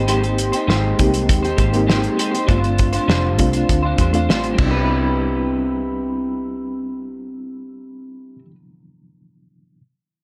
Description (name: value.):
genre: indie pop, bedroom pop.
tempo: 100 BPM.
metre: 4/4.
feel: straight.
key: C major.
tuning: A4 = 440 Hz.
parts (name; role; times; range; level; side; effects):
electric guitar through a small old amp; accompaniment; 0.0-8.6 s; G3 to C5; -25 LUFS; equal; analog chorus, warbly pitch drift.
reed electric piano; accompaniment; 0.0-9.8 s; G3 to G4; -25 LUFS; equal; fast tremolo.
vintage muted picked electric bass; bass; 0.0-8.4 s; F1 to E2; -24 LUFS; equal; none.
cloth-damped thuddy drum kit; drums; 0.1-4.7 s; crash cymbal, hi-hat, kick drum, snare drum; -22 LUFS; equal; none.
room: light reverb, studio ambience.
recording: none.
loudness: -18 LUFS.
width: mono.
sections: 0.0-4.9 A section; 4.9-7.3 B section.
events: none.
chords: 0.0 Abmaj7; 2.5 G7sus4; 4.6 Cmaj7.